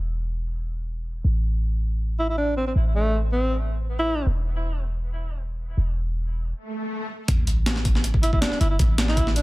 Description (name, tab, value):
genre	drum and bass, jungle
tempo	159 BPM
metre	4/4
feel	straight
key	A minor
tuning	A4 = 437 Hz
part	warm 808-style bass	bass	0.0-9.4 s	E1 to A1	-23 LUFS	equal	none
part	warm alto saxophone	melody	2.2-4.3, 8.2-9.4 s	A3 to E4	-26 LUFS	equal	dub echo
part	swell and sub drop	sound effects	6.6-8.8 s	none	-31 LUFS	equal	none
part	breakbeat sampler-style drum kit	drums	7.3-9.4 s	hi-hat, kick drum, snare drum	-22 LUFS	equal	overdrive
room	digital ambience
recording	none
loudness	-22 LUFS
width	side -20 dB against mid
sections	0.0-7.3 A section; 7.3-9.4 B section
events	break 6.5-7.3; swell 6.6-7.3; drop 7.3-9.4; impact 7.3-8.8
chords	0.0 N.C.; 7.3 A5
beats	0.12 0.49 0.87 | 1.25 1.62 2.00 2.38 | 2.76 3.13 3.51 3.89 | 4.27 4.64 5.02 5.40 | 5.78 6.15 6.53 6.91 | 7.29 7.66 8.04 8.42 | 8.79 9.17